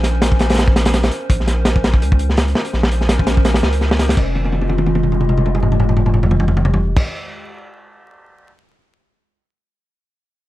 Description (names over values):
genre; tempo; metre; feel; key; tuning
drum and bass, jungle; 167 BPM; 4/4; swing 55% on 16ths; F minor; A4 = 441 Hz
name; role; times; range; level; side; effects
warbly tape-like pad; sustained chords; 0.0-7.0 s; Ab3 to Ab5; -24 LUFS; left 1 dB; chorus, built-in reverb
saturated sub bass; bass; 0.0-7.0 s; F1 to Db2; -18 LUFS; equal; none
crunchy breakbeat drum kit; drums; 0.0-8.5 s; crash cymbal, hi-hat, kick drum, snare drum, toms; -16 LUFS; equal; none
room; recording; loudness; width
studio reverb; dark, warm production, vinyl crackle; -13 LUFS; side -16 dB against mid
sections
0.0-4.2 A section; 4.2-7.0 B section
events
drop 0.0-4.2; drum fill 4.4-7.0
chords
0.0 Bbm9; 4.2 Fm9